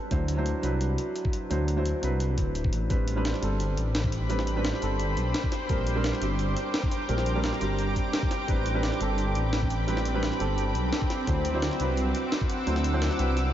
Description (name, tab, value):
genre	liquid drum and bass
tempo	172 BPM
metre	4/4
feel	straight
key	A dorian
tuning	A4 = 440 Hz
part	felt-muted upright piano	accompaniment	0.0-13.5 s	F#3 to C5	-31 LUFS	right 2 dB	vintage 12-bit sampler grit, analog delay
part	dark detuned saw bass	bass	0.1-13.5 s	D1 to D2	-28 LUFS	equal	none
part	breakbeat sampler-style drum kit	drums	0.1-13.4 s	hi-hat, snare drum	-34 LUFS	equal	none
part	electronic kick drum	drums	0.1-12.5 s	none	-29 LUFS	equal	none
part	shimmering ambient pad	sustained chords	3.8-13.5 s	C4 to E6	-32 LUFS	equal	chorus, built-in reverb
room	moderate huge ambient reverb, RT60 8.7 s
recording	dreamy mix soaked in reverb, nothing above 7.6 kHz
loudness	-25 LUFS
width	side -11 dB against mid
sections	0.0-13.5 A section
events	none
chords	0.1 D9; 2.9 Am11; 5.7 Bb69; 8.5 Am11; 11.3 D9